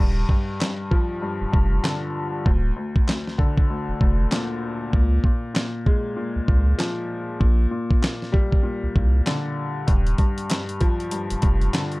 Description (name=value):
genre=hip hop, boom-bap hip-hop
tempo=97 BPM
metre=4/4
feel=swing 60% on 16ths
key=unclear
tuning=A4 = 440 Hz
part: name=clear upright piano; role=accompaniment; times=0.0-12.0 s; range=D2 to Ab3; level=-26 LUFS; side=left 2 dB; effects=none
part: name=saturated sub bass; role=bass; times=0.0-11.7 s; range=D1 to Db2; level=-20 LUFS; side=equal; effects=none
part: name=dusty soul sampler-style drum kit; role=drums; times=0.3-12.0 s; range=handclaps, hi-hat, kick drum, snare drum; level=-20 LUFS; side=equal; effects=none
room=little or no reverb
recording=dark, warm production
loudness=-20 LUFS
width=side -23 dB against mid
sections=0.0-12.0 A section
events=break 0.0-9.9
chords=0.0 Ebmaj9 (rootless); 2.5 Bb/D; 4.9 Db6; 7.4 Bb69; 9.9 Ebmaj9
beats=0.60 1.22 1.84 | 2.46 3.08 3.69 4.31 | 4.93 5.55 6.17 6.79 | 7.41 8.03 8.64 9.26 | 9.88 10.50 11.12 11.74